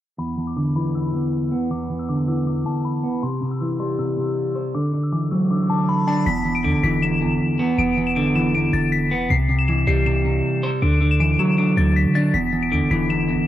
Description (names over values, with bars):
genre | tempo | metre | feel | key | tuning
hip hop, trap | 158 BPM | 4/4 | half-time | E minor | A4 = 441 Hz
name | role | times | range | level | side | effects
glassy synth bell | melody | 0.2-13.5 s | A5 to E7 | -26 LUFS | left 5 dB | chorus, cassette tape, analog delay
semi-hollow electric guitar | accompaniment | 0.2-13.5 s | E2 to C5 | -20 LUFS | right 1 dB | none
warm 808-style bass | bass | 6.3-13.5 s | E1 to D3 | -24 LUFS | equal | none
room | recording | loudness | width
light reverb | home recording on cassette, low-pass filter | -18 LUFS | side -12 dB against mid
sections
0.2-6.3 A section; 6.3-13.5 B section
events
filter sweep 0.2-6.3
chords
0.2 E5; 3.2 C; 4.7 Dadd9; 6.3 E7(no3); 9.3 C; 10.8 Dadd9; 12.3 E7(no3)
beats
| 0.19 0.57 0.95 1.33 | 1.71 2.09 2.47 2.85 | 3.23 3.61 3.99 4.37 | 4.75 5.12 5.50 5.88 | 6.26 6.64 7.02 7.40 | 7.78 8.16 8.54 8.92 | 9.30 9.68 10.06 10.44 | 10.82 11.20 11.58 11.96 | 12.34 12.72 13.10